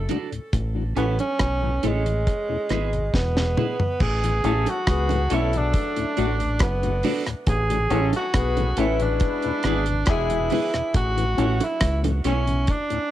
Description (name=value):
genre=roots reggae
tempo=69 BPM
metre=4/4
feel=straight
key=A major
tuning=A4 = 440 Hz
part: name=warm tenor saxophone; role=melody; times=0.0-13.1 s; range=G#3 to G#4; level=-26 LUFS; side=right 2 dB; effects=cassette tape, tape echo
part: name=deep dub fingered electric bass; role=bass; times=0.0-12.7 s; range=E1 to C#2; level=-24 LUFS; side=equal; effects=tube saturation
part: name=clean electric guitar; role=accompaniment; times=0.1-12.4 s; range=B3 to D5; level=-32 LUFS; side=right 9 dB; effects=lush chorus, cassette tape, tape echo
part: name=mellow tonewheel organ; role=accompaniment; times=0.1-13.0 s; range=D2 to F#4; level=-30 LUFS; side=left 7 dB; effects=slow rotary speaker, cassette tape, tape echo
part: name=deep reggae drum kit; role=drums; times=0.1-13.1 s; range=crash cymbal, hi-hat, kick drum, rim click, snare drum, toms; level=-24 LUFS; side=equal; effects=cassette tape
part: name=bongos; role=percussion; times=0.1-12.2 s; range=none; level=-31 LUFS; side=right 8 dB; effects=none
part: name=mellow horn section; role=second line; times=4.4-10.7 s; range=D3 to B4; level=-29 LUFS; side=left 9 dB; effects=cassette tape, tape echo
room=light reverb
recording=home recording on cassette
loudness=-20 LUFS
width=side -13 dB against mid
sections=0.0-4.0 A section; 4.0-13.1 B section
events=drum fill 3.1-4.0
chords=0.0 D; 0.5 A; 2.3 E; 4.0 A; 5.7 D; 7.5 A; 9.2 E; 10.9 A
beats=| 0.53 1.40 2.27 3.13 | 4.00 4.87 5.74 6.61 | 7.47 8.34 9.21 10.08 | 10.94 11.81 12.68